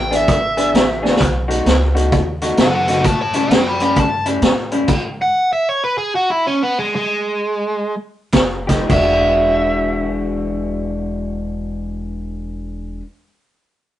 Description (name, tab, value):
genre	electric blues shuffle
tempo	104-131 BPM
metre	4/4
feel	swing 64% on 8ths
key	E mixolydian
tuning	A4 = 440 Hz
part	biting overdriven guitar	melody	0.0-13.0 s	G#3 to B5	-17 LUFS	right 1 dB	none
part	upright bass	bass	0.0-5.3, 8.3-13.0 s	E1 to A2	-24 LUFS	equal	none
part	electric guitar through a small old amp	riff	0.1-4.9, 8.7-13.0 s	A2 to G#4	-20 LUFS	left 2 dB	none
part	vintage drum kit	drums	0.1-5.0, 8.3-9.1 s	crash cymbal, hi-hat, kick drum, snare drum	-17 LUFS	equal	none
room	moderate studio reverb, RT60 0.6 s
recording	rough rehearsal-room recording, tube saturation, nothing above 10.6 kHz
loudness	-15 LUFS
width	side -12 dB against mid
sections	0.0-8.9 A section; 8.9-13.5 B section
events	drum fill 1.0; slowing down 4.9-8.9; stop 4.9-8.3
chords	0.0 E7; 1.2 B7; 3.0 A7; 4.9 N.C.; 8.3 F9; 8.9 E9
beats	0.28 0.74 | 1.20 1.66 2.12 2.58 | 3.04 3.50 3.96 4.42 | 4.88 5.34 5.81 6.28 | 6.77 7.27 7.79 8.33 | 8.89 9.47 10.04 10.62 | 11.20 11.77 12.35 12.93